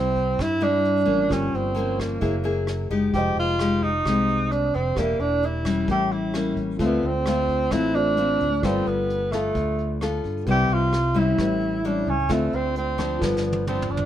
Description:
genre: bossa nova.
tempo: 131 BPM.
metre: 4/4.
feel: straight.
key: C major.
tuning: A4 = 435 Hz.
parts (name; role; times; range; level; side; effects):
breathy tenor saxophone; melody; 0.0-14.1 s; A3 to G4; -24 LUFS; right 2 dB; none.
dark baby grand piano; accompaniment; 0.0-14.1 s; E4 to Db6; -34 LUFS; right 2 dB; none.
nylon-string guitar; accompaniment; 0.0-14.1 s; G2 to A4; -25 LUFS; left 3 dB; none.
fingered electric bass; bass; 0.0-14.1 s; E1 to G2; -28 LUFS; right 1 dB; none.
vintage brush drum kit; drums; 0.2-14.1 s; hi-hat, kick drum, rim click, snare drum, toms; -33 LUFS; right 1 dB; none.
room: light reverb.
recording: minimal, uncompressed stereo recording.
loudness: -20 LUFS.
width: side -11 dB against mid.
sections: 0.0-14.1 A section.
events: drum fill 13.2-14.1.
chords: 0.0 Cmaj7; 1.3 Gm7b5; 2.2 F#9; 3.1 Fm9; 5.0 Em7b5; 5.9 A7b9; 6.8 Dm7; 8.6 G9; 10.5 Cmaj7; 11.4 A7; 12.3 Dm7; 13.2 G7.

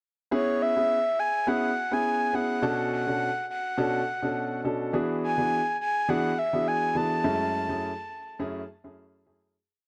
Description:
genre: afrobeats.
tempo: 104 BPM.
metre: 4/4.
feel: swing 55% on 16ths.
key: unclear.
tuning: A4 = 440 Hz.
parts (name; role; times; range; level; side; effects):
breathy flute-like synth lead; melody; 0.3-8.7 s; C#5 to A5; -29 LUFS; equal; chorus, tape echo.
warm grand piano; accompaniment; 0.3-9.5 s; F#2 to A4; -30 LUFS; equal; none.
room: light reverb, small room ambience.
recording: none.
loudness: -27 LUFS.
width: mono.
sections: 0.3-9.5 chorus.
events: fade-out 7.2-9.5.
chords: 0.3 C#m7; 2.6 Bm9; 4.9 E7; 7.2 F#m7.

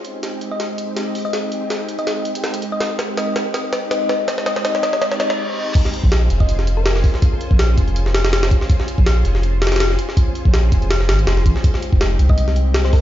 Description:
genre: drum and bass, jungle.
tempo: 163 BPM.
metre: 4/4.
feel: swing 55% on 16ths.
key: Bb dorian.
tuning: A4 = 440 Hz.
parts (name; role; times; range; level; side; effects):
soft string machine; sustained chords; 0.0-13.0 s; Ab3 to C5; -26 LUFS; equal; ensemble chorus.
jungle sampler-style drum kit; drums; 0.0-13.0 s; crash cymbal, hi-hat, kick drum, snare drum; -18 LUFS; equal; high-pass filter on hats, studio reverb, high-pass filter on kick, high-pass filter on snare, high-pass filter on cymbals.
thumb-piano-like synth pluck; melody; 0.5-7.0, 12.3-13.0 s; Bb4 to Eb5; -24 LUFS; left 3 dB; chorus, dub echo.
reverse cymbal; sound effects; 5.1-5.8 s; none; -30 LUFS; equal; none.
soft dub sub bass; bass; 6.0-12.9 s; F1 to C2; -16 LUFS; equal; none.
room: light reverb.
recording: played on a big sound system in a bare room, stone room reverb, nothing above 7.5 kHz.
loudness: -15 LUFS.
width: side -12 dB against mid.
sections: 0.0-5.8 A section; 5.8-13.0 B section.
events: build-up 0.0-5.8; drum fill 0.0-5.4; reverse cymbal 5.1-5.8; break 5.4-5.8; drop 5.8-13.0.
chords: 0.0 Abmaj7; 5.8 Bbm9; 11.6 Fm9.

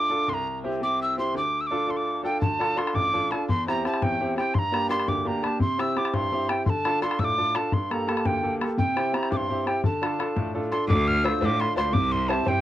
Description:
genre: celtic folk, Celtic jig.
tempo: 113 BPM (dotted quarters).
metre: 6/8.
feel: straight.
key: D minor.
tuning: A4 = 440 Hz.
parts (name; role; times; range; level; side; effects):
mellow wooden whistle; melody; 0.0-12.6 s; G5 to F6; -26 LUFS; equal; none.
bright upright piano; accompaniment; 0.0-12.6 s; A1 to C5; -27 LUFS; equal; none.
bodhran; percussion; 2.4-12.5 s; none; -28 LUFS; left 2 dB; none.
bright cello; bass; 10.9-12.6 s; C2 to A2; -26 LUFS; equal; none.
room: light reverb.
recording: worn, warbling old tape, cassette tape, warbly pitch drift.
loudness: -22 LUFS.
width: side -13 dB against mid.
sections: 0.0-2.4 A section; 2.4-10.9 B section; 10.9-12.6 C section.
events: none.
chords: 0.3 C; 1.4 Dm; 3.5 C/E; 4.5 Gm; 5.6 C; 6.7 Dm; 7.7 Gmadd9; 8.8 C; 9.8 Dm; 10.9 Dm7; 11.9 C.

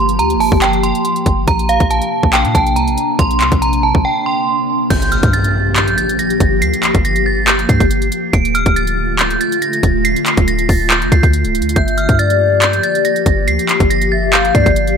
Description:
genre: hip hop, trap.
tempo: 140 BPM.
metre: 4/4.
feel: half-time.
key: unclear.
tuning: A4 = 439 Hz.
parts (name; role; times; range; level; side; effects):
metallic FM bell; melody; 0.0-15.0 s; F5 to D7; -17 LUFS; right 3 dB; chorus, low-pass filter, tape echo.
ethereal airy pad; sustained chords; 0.0-15.0 s; C3 to G4; -18 LUFS; left 1 dB; ensemble chorus, built-in reverb.
warm 808-style bass; bass; 0.0-15.0 s; C1 to Bb2; -18 LUFS; equal; none.
trap drum kit; drums; 0.1-15.0 s; crash cymbal, handclaps, hi-hat, kick drum; -15 LUFS; equal; none.
impact; sound effects; 4.9-6.6 s; none; -24 LUFS; equal; none.
hollow clarinet-like synth lead; second line; 11.8-15.0 s; D5 to F5; -17 LUFS; left 8 dB; chorus, tape echo.
room: little or no reverb.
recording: none.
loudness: -11 LUFS.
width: side -6 dB against mid.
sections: 0.0-4.9 A section; 4.9-15.0 B section.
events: break 4.0-4.9; impact 4.9-6.6.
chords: 0.0 Gm7; 1.5 Bbadd9; 4.9 Gm7; 8.3 Dm; 11.8 Gm7.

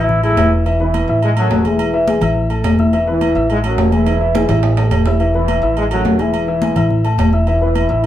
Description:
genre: latin, salsa.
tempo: 211 BPM.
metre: 4/4.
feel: straight.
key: E major.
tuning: A4 = 440 Hz.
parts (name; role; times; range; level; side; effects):
clear trombone; melody; 0.0-0.5 s; E4; -17 LUFS; equal; none.
dark grand piano; accompaniment; 0.0-8.1 s; E3 to E6; -19 LUFS; left 2 dB; none.
upright bass; bass; 0.0-8.1 s; E1 to A1; -17 LUFS; right 1 dB; none.
congas; percussion; 0.1-8.1 s; none; -20 LUFS; left 2 dB; none.
agogo bells and timbales; percussion; 0.2-8.1 s; none; -24 LUFS; right 6 dB; none.
mellow trombone section; melody; 0.8-8.1 s; F#2 to E4; -18 LUFS; equal; none.
room: wet studio reverb, RT60 0.6 s.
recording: heard from further back in the room.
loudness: -12 LUFS.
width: side -12 dB against mid.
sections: 0.7-8.1 A section.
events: drum fill 4.1-5.2.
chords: 0.1 A5; 0.7 E5; 1.2 A5; 2.9 E5; 3.5 A5; 5.2 E5; 5.8 A5; 7.5 E5.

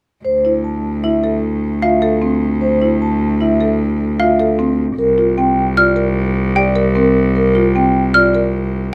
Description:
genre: classical, minimalist pattern music.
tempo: 152 BPM.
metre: 6/4.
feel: straight.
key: D minor.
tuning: A4 = 440 Hz.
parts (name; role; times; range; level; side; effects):
vibraphone with soft mallets; melody; 0.2-8.4 s; Bb4 to A5; -20 LUFS; equal; none.
clear cello; bass; 0.2-8.9 s; C2 to D2; -19 LUFS; equal; none.
marimba with medium mallets; arpeggios; 0.4-8.6 s; C4 to Bb4; -21 LUFS; equal; none.
xylophone with rubber mallets; arpeggios; 1.8-8.4 s; F5 to F6; -18 LUFS; equal; none.
room: light reverb.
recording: close, detailed microphones.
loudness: -15 LUFS.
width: mono.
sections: 0.2-8.9 A section.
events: none.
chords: 0.2 Dm; 5.0 C7sus4.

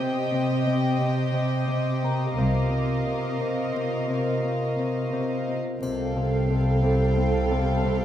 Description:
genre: cinematic, suspense film score.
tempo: 88 BPM.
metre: 5/4.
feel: straight.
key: unclear.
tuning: A4 = 439 Hz.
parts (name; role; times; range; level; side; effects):
warm symphonic violin section; melody; 0.0-8.0 s; F5 to G5; -36 LUFS; equal; none.
warm studio violin section; second line; 0.0-8.0 s; G4 to F5; -31 LUFS; left 1 dB; none.
glass harmonica; sustained chords; 0.0-8.0 s; F4 to F5; -34 LUFS; right 1 dB; none.
Celtic harp; riff; 0.0-8.0 s; C3 to C4; -29 LUFS; left 4 dB; none.
dark symphonic cello section; bass; 0.0-8.0 s; C3; -27 LUFS; right 1 dB; none.
clear studio violin section; texture; 0.0-8.0 s; A5 to Eb6; -40 LUFS; left 2 dB; none.
celesta; texture; 2.0-8.0 s; Bb4 to C6; -41 LUFS; left 2 dB; none.
warm symphonic double bass section; bass; 2.4-8.0 s; C2; -27 LUFS; right 1 dB; none.
dark symphonic viola section; accompaniment; 5.8-8.0 s; A4; -29 LUFS; right 3 dB; none.
triangle; percussion; 5.8-7.1 s; none; -51 LUFS; left 1 dB; none.
room: moderate scoring stage reverb, RT60 1.7 s.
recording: dark, warm production, vinyl crackle.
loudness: -22 LUFS.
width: side -11 dB against mid.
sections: 0.0-5.8 A section; 5.8-8.0 B section.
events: none.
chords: 0.0 Cm; 2.4 F7sus4/C; 5.8 Fadd9/C.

